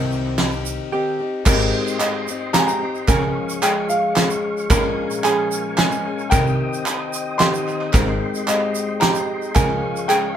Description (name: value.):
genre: indie folk with a building arrangement.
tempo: 111 BPM.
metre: 3/4.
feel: straight.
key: Ab major.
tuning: A4 = 439 Hz.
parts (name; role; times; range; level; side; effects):
picked plugged-in steel-string acoustic guitar; accompaniment; 0.0-10.4 s; Bb2 to Ab4; -25 LUFS; left 5 dB; none.
ukulele; arpeggios; 0.0-10.4 s; G4 to Bb4; -24 LUFS; right 5 dB; none.
upright bass; bass; 0.0-9.8 s; Ab1 to Db2; -25 LUFS; equal; none.
group handclap; percussion; 0.1-10.2 s; none; -26 LUFS; right 2 dB; none.
tube shaker; percussion; 0.1-10.1 s; none; -34 LUFS; right 6 dB; none.
natural country drum kit; drums; 0.4-10.2 s; crash cymbal, hi-hat, kick drum, ride cymbal, snare drum; -20 LUFS; equal; none.
felt-muted upright piano; accompaniment; 1.4-10.4 s; Ab1 to Eb5; -35 LUFS; right 1 dB; none.
tonewheel organ; sustained chords; 1.5-10.4 s; Ab3 to Eb6; -30 LUFS; equal; slow rotary speaker, overdrive, chorus vibrato.
warm upright piano; melody; 2.0-10.4 s; Eb5 to C6; -23 LUFS; equal; none.
room: moderate studio reverb, RT60 0.5 s.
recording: band playing live in one room.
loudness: -17 LUFS.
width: side -9 dB against mid.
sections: 0.0-1.5 A section; 1.5-10.4 B section.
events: none.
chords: 0.0 Cm; 1.5 Abmaj7; 3.1 Db; 4.7 Bbm7; 6.3 Cm; 7.9 Abmaj7; 9.6 Db.